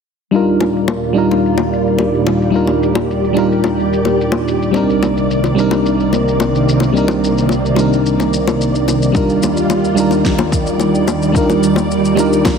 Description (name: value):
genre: sunset chillout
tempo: 109 BPM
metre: 4/4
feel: straight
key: Eb major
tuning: A4 = 439 Hz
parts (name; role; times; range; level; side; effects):
- mellow FM electric piano; accompaniment; 0.3-12.6 s; G3 to Bb4; -15 LUFS; equal; chorus, auto-pan, low-pass filter, ping-pong delay
- soft string machine; sustained chords; 0.3-12.6 s; C2 to D5; -16 LUFS; right 1 dB; ensemble chorus
- electronic shaker and snare drum; drums; 0.3-12.6 s; none; -26 LUFS; left 1 dB; low-pass filter on perc, low-pass filter on snare
- bongos; percussion; 0.6-12.6 s; none; -22 LUFS; left 5 dB; none
- electronic kick drum; drums; 9.1-12.6 s; none; -18 LUFS; equal; overdrive
room: wet plate reverb, RT60 1.5 s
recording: heavily compressed radio sound, multiband compression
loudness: -12 LUFS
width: side -6 dB against mid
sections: 0.3-12.6 A section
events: filter sweep on string machine 0.3-12.6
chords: 0.3 Ebmaj9; 4.7 Cm9; 9.1 Ebmaj9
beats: | 0.34 0.89 1.44 1.99 | 2.54 3.09 3.65 4.20 | 4.75 5.30 5.85 6.40 | 6.95 7.50 8.05 8.60 | 9.15 9.70 10.25 10.80 | 11.35 11.90 12.45